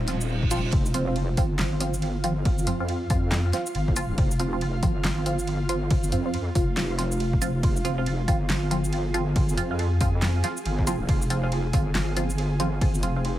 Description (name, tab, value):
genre	deep dubstep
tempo	139 BPM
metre	4/4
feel	swing 61% on 16ths, half-time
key	F minor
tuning	A4 = 441 Hz
part	dark analog pad	sustained chords	0.0-13.4 s	F4	-36 LUFS	right 4 dB	chorus
part	wobble bass	bass	0.0-13.4 s	Eb1 to F2	-26 LUFS	equal	chorus
part	reverse cymbal	sound effects	0.0-0.7 s	none	-39 LUFS	right 6 dB	none
part	flickering grainy texture	texture	0.0-13.4 s	C4 to F5	-37 LUFS	equal	built-in reverb
part	filtered dub chord stab	stabs	0.1-13.3 s	F3 to F4	-30 LUFS	right 1 dB	phaser, wide subtle chorus, dub echo
part	deep house drum kit	drums	0.1-13.4 s	handclaps, hi-hat, ride cymbal, shaker, snare drum	-32 LUFS	equal	overdrive
part	electronic kick drum	drums	0.4-12.9 s	none	-25 LUFS	equal	overdrive
room	little or no reverb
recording	none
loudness	-22 LUFS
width	side -14 dB against mid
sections	0.0-13.4 A section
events	reverse cymbal 0.0-0.7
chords	0.0 F5